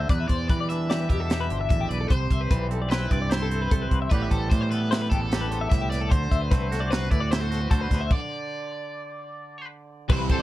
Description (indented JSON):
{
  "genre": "math rock and midwest emo",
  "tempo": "150 BPM",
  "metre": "5/4",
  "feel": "straight",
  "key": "unclear",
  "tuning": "A4 = 440 Hz",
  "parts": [
    { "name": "cranked stack guitar", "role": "melody", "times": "0.0-10.4 s", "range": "A4 to E5", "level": "-33 LUFS", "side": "left 2 dB", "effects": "overdrive, analog delay" },
    { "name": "twangy electric guitar", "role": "accompaniment", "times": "0.0-10.4 s", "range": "E2 to G4", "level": "-32 LUFS", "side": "right 5 dB", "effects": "none" },
    { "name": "twelve-string electric guitar", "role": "arpeggios", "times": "0.0-10.4 s", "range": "G4 to E5", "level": "-32 LUFS", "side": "left 6 dB", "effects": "tremolo" },
    { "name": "growling fingered electric bass", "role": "bass", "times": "0.0-10.3 s", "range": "G1 to E3", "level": "-27 LUFS", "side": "equal", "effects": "overdrive" },
    { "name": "crisp fusion drum kit", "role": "drums", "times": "0.1-10.4 s", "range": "crash cymbal, hi-hat, kick drum, ride cymbal, snare drum", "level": "-24 LUFS", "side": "equal", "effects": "none" },
    { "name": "crunchy overdriven guitar", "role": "riff", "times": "10.1-10.4 s", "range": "C3 to E4", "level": "-30 LUFS", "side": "right 1 dB", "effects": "none" }
  ],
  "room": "little or no reverb",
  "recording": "dark, warm production",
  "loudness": "-22 LUFS",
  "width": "side -15 dB against mid",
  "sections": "0.0-10.1 A section",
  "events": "stop 8.1-10.1",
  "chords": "0.1 Em7; 2.1 Cmaj7; 4.1 Am9; 6.1 D7",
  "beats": "| 0.10 0.50 0.90 1.31 1.71 | 2.11 2.51 2.91 3.31 3.71 | 4.12 4.51 4.92 5.32 5.71 | 6.11 6.51 6.91 7.31 7.71 | 8.11 8.51 8.90 9.30 9.70 | 10.09"
}